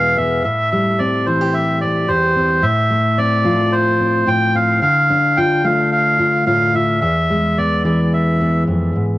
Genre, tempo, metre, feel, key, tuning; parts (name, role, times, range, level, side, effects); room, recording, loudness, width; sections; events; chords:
acoustic folk duo or small band; 110 BPM; 4/4; straight; A minor; A4 = 440 Hz
melodica; melody; 0.0-8.6 s; C5 to G5; -16 LUFS; right 1 dB; analog delay
fingerpicked steel-string acoustic guitar; accompaniment; 0.0-9.2 s; E2 to G#4; -17 LUFS; left 1 dB; cassette tape
moderate studio reverb, RT60 0.6 s; home recording on cassette; -14 LUFS; side -16 dB against mid
0.0-9.2 A section
0.4 Am7; 2.6 F/A; 4.8 Dm; 7.0 E